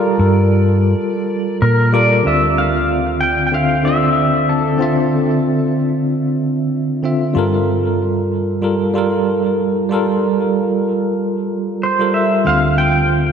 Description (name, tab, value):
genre	sunset chillout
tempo	94 BPM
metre	4/4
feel	swing 55% on 16ths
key	D minor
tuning	A4 = 440 Hz
part	pedal steel guitar	melody	0.0-5.7, 11.8-13.3 s	A4 to G5	-18 LUFS	equal	lush chorus, ping-pong delay
part	bell-like tine electric piano	accompaniment	0.0-13.3 s	D3 to F5	-16 LUFS	equal	medium stereo tremolo, auto-pan, low-pass filter, ping-pong delay
part	hollow-body short-scale fingered electric bass	bass	0.2-13.3 s	D2 to Bb2	-18 LUFS	equal	none
room	wet lush hall reverb, RT60 3.0 s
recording	dreamy mix soaked in reverb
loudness	-14 LUFS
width	side -7 dB against mid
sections	0.0-2.2 A section; 2.2-13.3 B section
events	filter sweep on tine electric piano 0.0-2.2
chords	0.0 Gm9; 2.2 Dm9; 7.4 Gm9; 12.5 Dm7